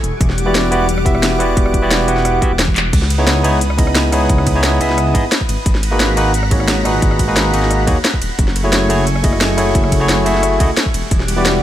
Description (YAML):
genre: liquid drum and bass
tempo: 176 BPM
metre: 4/4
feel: straight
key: C# minor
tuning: A4 = 440 Hz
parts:
  - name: lush unison pad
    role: sustained chords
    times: 0.0-11.6 s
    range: G3 to D#6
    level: -23 LUFS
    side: equal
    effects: chorus, sidechain pumping
  - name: dark detuned saw bass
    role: bass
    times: 0.0-11.6 s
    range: D#1 to D#2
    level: -18 LUFS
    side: equal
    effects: none
  - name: drum and bass drum kit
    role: drums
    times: 0.0-11.5 s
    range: crash cymbal, handclaps, hi-hat, ride cymbal, rim click, snare drum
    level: -19 LUFS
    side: equal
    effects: none
  - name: electronic kick drum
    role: drums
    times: 0.2-11.2 s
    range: none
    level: -16 LUFS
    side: equal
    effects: none
  - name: barky tine electric piano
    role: accompaniment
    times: 0.5-11.6 s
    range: A#2 to F#5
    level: -17 LUFS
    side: equal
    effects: overdrive, digital delay
room: light reverb, digital ambience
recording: none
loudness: -12 LUFS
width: side -12 dB against mid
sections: 0.0-11.6 A section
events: drum fill 2.8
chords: 0.0 Em9; 2.9 C#m9; 5.7 G#m9; 8.4 F#m9; 10.9 Em9